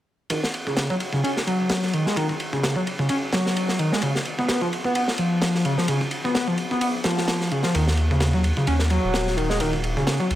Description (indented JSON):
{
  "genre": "breakbeat, breaks",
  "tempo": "129 BPM",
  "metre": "4/4",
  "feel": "swing 56% on 16ths",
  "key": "Eb minor",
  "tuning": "A4 = 440 Hz",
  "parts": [
    { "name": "overdriven synth lead", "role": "riff", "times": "0.3-10.2 s", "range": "Db3 to Db4", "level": "-23 LUFS", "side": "equal", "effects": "tube saturation, wide subtle chorus, ping-pong delay" },
    { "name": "crunchy breakbeat drum kit", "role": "drums", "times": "0.3-10.4 s", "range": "kick drum, ride cymbal, snare drum", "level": "-26 LUFS", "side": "equal", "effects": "high-pass filter on kick, high-pass filter on cymbals, high-pass filter on snare, high-pass filter on room" },
    { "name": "saturated sub bass", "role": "bass", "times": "7.7-10.4 s", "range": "Eb1 to Eb2", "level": "-22 LUFS", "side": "equal", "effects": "none" }
  ],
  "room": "light reverb, small room ambience",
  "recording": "none",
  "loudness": "-20 LUFS",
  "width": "side -13 dB against mid",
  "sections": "0.3-10.4 A section",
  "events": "none",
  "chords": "0.3 Ebm7; 4.0 Db; 7.7 Ebm7",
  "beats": "| 0.30 0.77 1.23 1.70 | 2.16 2.63 3.10 3.56 | 4.03 4.49 4.96 5.42 | 5.88 6.35 6.82 7.28 | 7.75 8.21 8.68 9.14 | 9.61 10.07"
}